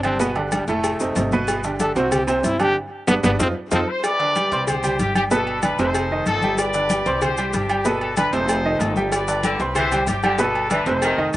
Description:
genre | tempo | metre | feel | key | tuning
latin, salsa | 189 BPM | 4/4 | straight | G major | A4 = 440 Hz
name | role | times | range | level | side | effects
bright trombone | melody | 0.0-3.8 s | D3 to A4 | -23 LUFS | left 1 dB | none
clear baby grand piano | accompaniment | 0.0-11.4 s | A2 to C6 | -22 LUFS | right 2 dB | none
upright bass | bass | 0.0-11.4 s | F1 to F2 | -28 LUFS | equal | none
agogo bells and timbales | percussion | 0.0-11.4 s | none | -28 LUFS | right 2 dB | slapback echo
congas | percussion | 0.0-11.4 s | none | -28 LUFS | left 2 dB | none
maracas | percussion | 0.0-11.4 s | none | -34 LUFS | left 5 dB | none
cowbell | percussion | 0.2-11.4 s | none | -30 LUFS | left 4 dB | slapback echo
clear trumpet section | melody | 3.7-11.4 s | C4 to D5 | -23 LUFS | left 1 dB | slapback echo
edgy saxophone section | second line | 9.4-11.3 s | D3 to E3 | -24 LUFS | left 2 dB | none
room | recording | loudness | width
little or no reverb | recorded outdoors, with no room sound, nothing above 10.5 kHz | -18 LUFS | side -15 dB against mid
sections
0.0-4.0 A section; 4.0-11.4 B section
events
trombone solo 0.0-4.0; drum fill 2.8-4.0; band accent 2.8-4.0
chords
0.2 G; 0.8 F7; 1.5 G; 2.1 Csus2; 2.8 G; 3.4 F5; 4.0 G; 4.7 C5; 5.3 G; 6.0 F7; 6.6 G; 7.2 Csus2; 7.9 G; 8.5 F7; 9.1 G; 9.8 Csus2; 10.4 G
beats
| 0.20 0.52 0.84 1.16 | 1.48 1.80 2.12 2.44 | 2.76 3.08 3.40 3.72 | 4.04 4.36 4.68 5.00 | 5.32 5.63 5.95 6.27 | 6.59 6.90 7.22 7.54 | 7.86 8.17 8.49 8.81 | 9.12 9.44 9.76 10.07 | 10.39 10.71 11.02 11.34

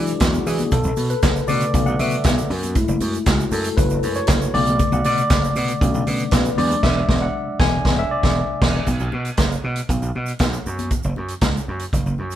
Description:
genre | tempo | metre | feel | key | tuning
disco | 118 BPM | 4/4 | straight | B dorian | A4 = 440 Hz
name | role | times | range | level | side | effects
tine electric piano | accompaniment | 0.0-8.9 s | C#3 to G#5 | -21 LUFS | left 2 dB | medium stereo tremolo
gritty slap bass | bass | 0.0-12.3 s | E1 to E3 | -22 LUFS | right 1 dB | overdrive
vintage drum kit | drums | 0.1-12.4 s | crash cymbal, handclaps, hi-hat, kick drum, snare drum | -21 LUFS | right 1 dB | none
tube shaker | percussion | 0.1-12.4 s | none | -38 LUFS | right 8 dB | none
congas | percussion | 0.2-12.3 s | none | -31 LUFS | left 4 dB | none
room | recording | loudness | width
moderate studio reverb, RT60 0.7 s | band playing live in one room | -17 LUFS | side -11 dB against mid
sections
0.0-8.9 A section; 8.9-12.4 B section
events
tine electric piano solo 0.0-8.9; band accent 6.8-8.9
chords
0.0 E9; 0.7 Bm7; 2.5 F#m7; 4.5 Bm7; 6.6 E9; 8.9 B5; 10.7 F#5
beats
0.21 | 0.72 1.23 1.74 2.25 | 2.76 3.27 3.78 4.29 | 4.80 5.31 5.82 6.33 | 6.83 7.34 7.85 8.36 | 8.87 9.38 9.89 10.40 | 10.91 11.42 11.93

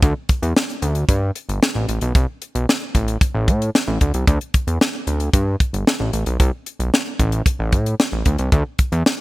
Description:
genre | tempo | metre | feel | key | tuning
early-eighties boogie funk | 113 BPM | 4/4 | straight | unclear | A4 = 439 Hz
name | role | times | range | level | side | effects
fat analog bass | bass | 0.0-9.0 s | G1 to A2 | -19 LUFS | equal | none
tight funk drum kit | drums | 0.0-9.2 s | hi-hat, kick drum, snare drum | -18 LUFS | equal | none
room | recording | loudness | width
little or no reverb | bright 1980s-style digital production | -17 LUFS | side -19 dB against mid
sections
0.0-9.2 A section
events
none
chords
none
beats
| 0.03 0.56 1.09 1.62 | 2.15 2.68 3.21 3.74 | 4.28 4.81 5.34 5.87 | 6.40 6.93 7.46 7.99 | 8.52 9.05

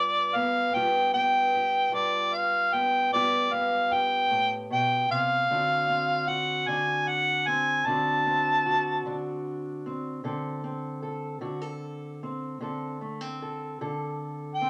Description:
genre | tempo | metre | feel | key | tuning
acoustic country blues, solo or duo | 51 BPM (dotted quarters) | 12/8 | straight | unclear | A4 = 439 Hz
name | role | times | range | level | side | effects
mellow harmonica | melody | 0.0-14.7 s | D5 to A5 | -26 LUFS | equal | none
fingerpicked steel-string acoustic guitar | accompaniment | 0.0-14.7 s | G2 to A4 | -34 LUFS | equal | none
room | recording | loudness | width
moderate studio reverb, RT60 0.7 s | none | -27 LUFS | mono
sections
0.0-14.7 A section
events
none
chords
0.0 G7; 5.5 D7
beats
| 0.74 1.93 3.12 4.31 | 5.50 6.68 7.87 9.05 | 10.24 11.42 12.61 13.79

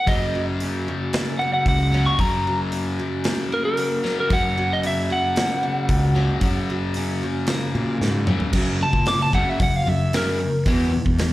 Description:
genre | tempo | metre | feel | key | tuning
quiet-loud alternative rock | 113 BPM | 4/4 | straight | unclear | A4 = 440 Hz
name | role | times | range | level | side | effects
lightly driven lead guitar | melody | 0.0-10.7 s | A#4 to D6 | -23 LUFS | equal | slapback echo
picked steel-string acoustic guitar | arpeggios | 0.1-11.3 s | F#2 to C#4 | -30 LUFS | right 3 dB | slapback echo
distorted electric guitar | riff | 0.1-11.3 s | E2 to F#3 | -26 LUFS | left 3 dB | distortion
fuzz fingered electric bass | bass | 0.1-11.3 s | C#2 to A#2 | -23 LUFS | equal | overdrive
big rock drum kit | drums | 0.1-11.3 s | crash cymbal, hi-hat, kick drum, snare drum, toms | -25 LUFS | equal | none
room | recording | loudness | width
studio ambience | live gig heard through the venue's PA, club reverb | -19 LUFS | side -16 dB against mid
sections
0.0-8.5 A section; 8.5-11.3 B section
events
half time 0.0-8.5; drum fill 8.0-8.5; lead electric guitar solo 8.5-11.3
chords
0.1 F#; 10.7 Esus2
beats
| 0.07 0.60 1.13 1.66 | 2.19 2.72 3.25 3.78 | 4.31 4.83 5.36 5.89 | 6.42 6.95 7.48 8.01 | 8.54 9.07 9.60 10.13 | 10.66 11.19

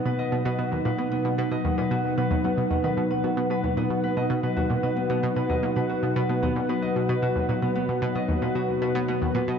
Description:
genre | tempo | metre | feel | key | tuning
ambient, sequencer-driven space music | 113 BPM | 4/4 | straight | B major | A4 = 443 Hz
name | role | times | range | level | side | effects
sweeping resonant pad | sustained chords | 0.0-9.6 s | B2 to F#5 | -25 LUFS | equal | chorus
Celtic harp | arpeggios | 0.0-9.6 s | B3 to D#5 | -30 LUFS | left 3 dB | auto-pan, analog delay
analog pluck | riff | 0.1-9.5 s | D#2 to D#3 | -28 LUFS | right 1 dB | chorus, analog delay
room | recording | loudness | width
wet huge ambient reverb, RT60 8.5 s | cassette tape, nothing above 7.6 kHz | -23 LUFS | side -7 dB against mid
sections
0.0-9.6 A section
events
none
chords
0.0 B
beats
0.32 | 0.85 1.38 1.91 2.44 | 2.98 3.51 4.04 4.57 | 5.10 5.63 6.16 6.69 | 7.22 7.75 8.29 8.82 | 9.35

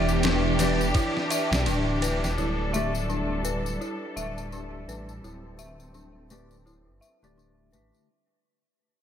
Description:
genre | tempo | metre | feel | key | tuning
trip hop | 84 BPM | 4/4 | swing 58% on 16ths | unclear | A4 = 440 Hz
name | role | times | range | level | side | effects
mellow electric guitar | accompaniment | 0.0-8.1 s | D3 to E5 | -29 LUFS | right 2 dB | harmonic tremolo, low-pass filter, tape echo
rich studio string section | sustained chords | 0.0-8.1 s | E3 to A4 | -31 LUFS | equal | vintage 12-bit sampler grit, low-pass filter
dark detuned synth bell | arpeggios | 0.0-8.1 s | D4 to E5 | -32 LUFS | left 2 dB | chorus, tremolo, vintage 12-bit sampler grit, low-pass filter, tape echo
dark detuned saw bass | bass | 0.0-7.9 s | D1 to B1 | -30 LUFS | equal | none
tambourine | percussion | 0.1-8.1 s | none | -38 LUFS | left 6 dB | none
dusty soul sampler-style drum kit | drums | 0.2-2.4 s | kick drum, ride cymbal, snare drum | -30 LUFS | right 1 dB | studio reverb
room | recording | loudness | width
light reverb, digital ambience | none | -24 LUFS | side -9 dB against mid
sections
0.0-8.1 A section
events
fade-out 0.0-8.1; filter sweep on string section 0.0-8.1; filter sweep on synth bell 0.0-8.1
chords
0.0 Em7; 2.4 Dsus4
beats
0.23 0.95 1.66 | 2.38 3.09 3.80 4.52 | 5.23 5.95 6.66 7.38

